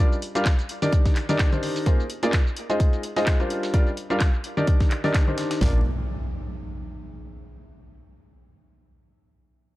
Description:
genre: piano house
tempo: 128 BPM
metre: 4/4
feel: swing 56% on 16ths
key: Bb mixolydian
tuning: A4 = 440 Hz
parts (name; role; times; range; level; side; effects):
- clear grand piano; riff; 0.0-5.8 s; Eb3 to F5; -25 LUFS; left 1 dB; sidechain pumping, low-pass filter, tape echo
- house drum kit; drums; 0.1-5.6 s; handclaps, hi-hat, shaker; -32 LUFS; right 1 dB; low-pass filter on hats, low-pass filter on snare, low-pass filter on perc, low-pass filter on room
- breakbeat sampler-style drum kit; drums; 0.2-5.6 s; hi-hat, snare drum; -37 LUFS; left 1 dB; high-pass filter on hats, high-pass filter on snare, high-pass filter on room
- house drum kit; drums; 0.5-5.7 s; kick drum, snare drum; -20 LUFS; equal; none
- organ-like FM bass; bass; 5.6-5.8 s; Bb1; -21 LUFS; equal; sidechain pumping
- impact; sound effects; 5.6-7.5 s; none; -31 LUFS; equal; none
room: little or no reverb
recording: dry, gritty hardware recording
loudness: -20 LUFS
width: side -17 dB against mid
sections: 0.0-5.6 A section; 5.6-7.5 B section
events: none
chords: 0.0 Gm7; 0.9 Ebmaj7; 1.9 Bb9sus4; 2.8 Ab6; 3.5 Gm7; 4.7 Ebmaj7; 5.6 Bb

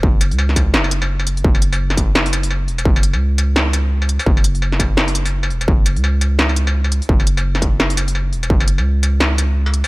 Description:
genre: half-time drum and bass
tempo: 170 BPM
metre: 4/4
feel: swing 59% on 16ths, half-time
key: unclear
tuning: A4 = 440 Hz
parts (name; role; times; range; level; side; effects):
- long sustained 808-style bass; bass; 0.0-9.8 s; E1 to C#2; -17 LUFS; equal; none
- electronic kick drum; drums; 0.0-8.6 s; none; -15 LUFS; equal; distortion
- industrial drum kit; drums; 0.2-9.9 s; hi-hat, snare drum, struck metal; -20 LUFS; equal; none
room: digital ambience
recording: none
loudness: -14 LUFS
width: side -22 dB against mid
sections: 0.0-9.9 A section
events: break 1.1-1.4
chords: none

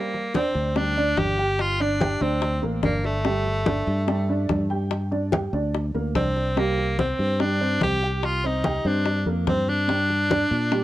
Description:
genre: Afro-Cuban jazz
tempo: 145 BPM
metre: 4/4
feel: straight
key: G minor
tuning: A4 = 440 Hz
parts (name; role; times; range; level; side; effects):
- edgy tenor saxophone; melody; 0.0-10.8 s; A3 to G4; -25 LUFS; equal; tape echo
- dark upright piano; accompaniment; 0.0-10.8 s; G3 to G5; -28 LUFS; right 2 dB; none
- bongos; percussion; 0.1-10.8 s; none; -30 LUFS; left 6 dB; none
- congas; percussion; 0.1-10.8 s; none; -29 LUFS; left 1 dB; none
- fingered electric bass; bass; 0.6-10.8 s; G1 to Bb2; -26 LUFS; equal; none
room: light reverb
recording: worn, warbling old tape, cassette tape, warbly pitch drift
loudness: -21 LUFS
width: side -15 dB against mid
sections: 0.0-10.8 A section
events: none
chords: 0.0 Gsus2; 6.6 C5; 9.9 Gm

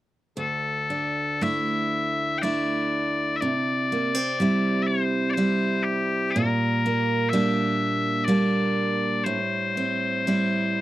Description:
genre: celtic folk, Celtic slow air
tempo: 61 BPM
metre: 3/4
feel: uneven beats, rubato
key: unclear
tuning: A4 = 440 Hz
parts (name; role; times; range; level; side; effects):
- loud bright bagpipes; melody; 0.4-10.8 s; G4 to G5; -26 LUFS; left 4 dB; none
- picked steel-string acoustic guitar; accompaniment; 0.4-10.8 s; D2 to E4; -24 LUFS; right 2 dB; none
room: little or no reverb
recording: dry, close 1970s-style studio recording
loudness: -22 LUFS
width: side -15 dB against mid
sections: 0.4-10.8 A section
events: none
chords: 0.4 Dsus2; 3.4 C; 6.4 Gm/Bb; 9.3 Am7

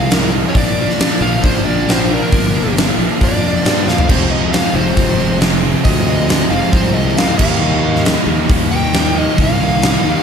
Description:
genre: quiet-loud alternative rock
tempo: 136 BPM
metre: 4/4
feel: straight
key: F dorian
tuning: A4 = 442 Hz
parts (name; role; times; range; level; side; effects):
- dark smooth lead guitar; melody; 0.0-10.2 s; Bb4 to G5; -20 LUFS; equal; overdrive
- cranked stack guitar; riff; 0.0-10.2 s; F2 to Eb4; -22 LUFS; right 10 dB; overdrive
- thick fuzz guitar; riff; 0.0-10.2 s; F2 to Eb4; -20 LUFS; left 9 dB; distortion, slapback echo
- fuzz fingered electric bass; bass; 0.0-10.1 s; F1 to G2; -19 LUFS; equal; overdrive
- huge arena drum kit; drums; 0.1-9.9 s; crash cymbal, hi-hat, kick drum, snare drum, toms; -15 LUFS; equal; none
- thick fuzz guitar; riff; 4.1-10.2 s; F2 to F4; -22 LUFS; right 1 dB; none
room: light reverb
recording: none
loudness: -12 LUFS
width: side -7 dB against mid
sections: 0.0-10.2 A section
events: lead electric guitar solo 0.0-10.2; drum fill 3.9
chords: 0.0 Fm; 0.5 Bb; 4.1 Fm; 7.4 Ebadd9

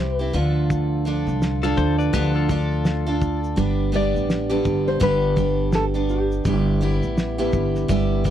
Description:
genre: acoustic pop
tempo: 83 BPM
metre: 4/4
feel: swing 60% on 16ths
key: unclear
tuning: A4 = 441 Hz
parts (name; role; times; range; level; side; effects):
- nylon-string guitar; melody; 0.0-8.2 s; F4 to D5; -25 LUFS; left 3 dB; none
- picked steel-string acoustic guitar; accompaniment; 0.0-8.3 s; G2 to A4; -23 LUFS; right 2 dB; none
- upright bass; bass; 0.0-8.3 s; G1 to D2; -23 LUFS; equal; none
- cloth-damped thuddy drum kit; drums; 0.3-8.3 s; kick drum, shaker, snare drum; -24 LUFS; equal; none
- direct-recorded clean electric guitar; second line; 1.6-3.4 s; F4 to D5; -29 LUFS; left 7 dB; none
room: little or no reverb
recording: dry, close 1970s-style studio recording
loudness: -19 LUFS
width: side -10 dB against mid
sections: 0.0-8.3 A section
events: none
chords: 0.3 Dm; 3.6 G; 6.5 Em/G

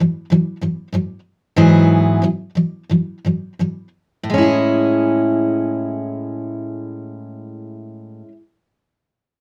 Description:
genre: pop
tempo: 83-97 BPM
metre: 4/4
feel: straight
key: A major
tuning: A4 = 440 Hz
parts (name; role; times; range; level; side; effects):
- picked steel-string acoustic guitar; solo; 0.0-8.4 s; G#2 to G#4; -18 LUFS; equal; none
room: moderate studio ambience, RT60 0.5 s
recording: close, detailed microphones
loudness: -18 LUFS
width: mono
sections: 0.0-4.3 A section; 4.3-7.2 B section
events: slowing down 0.0-4.3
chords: 0.0 Eadd9/G#; 4.3 Amaj7

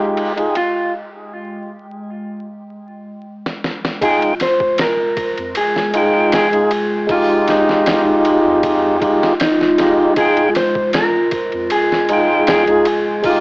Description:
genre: trip hop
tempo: 78 BPM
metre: 4/4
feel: straight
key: F minor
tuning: A4 = 440 Hz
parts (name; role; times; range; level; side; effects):
- mellow electric guitar; melody; 0.0-13.4 s; Eb4 to C5; -17 LUFS; equal; cassette tape, tape echo
- tonewheel organ; accompaniment; 0.0-13.4 s; Ab3 to G5; -16 LUFS; equal; overdrive, stopped rotary speaker, harmonic tremolo
- warbly tape-like pad; sustained chords; 0.0-13.4 s; Ab3 to G5; -22 LUFS; equal; chorus, built-in reverb, vintage 12-bit sampler grit
- trip hop sampler-style drum kit; drums; 0.2-13.4 s; hi-hat, kick drum, ride cymbal, snare drum; -23 LUFS; equal; low-pass filter on cymbals, cassette tape, low-pass filter on snare, low-pass filter on kick, low-pass filter on hats
- soft dub sub bass; bass; 4.0-13.4 s; F1 to F2; -38 LUFS; equal; none
room: moderate studio reverb, RT60 0.6 s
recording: home recording on cassette, vinyl crackle, AM radio sound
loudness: -13 LUFS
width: side -30 dB against mid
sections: 0.0-4.0 A section; 4.0-13.4 B section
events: break 0.9-4.0; drum fill 3.4-4.0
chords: 0.0 Fm9

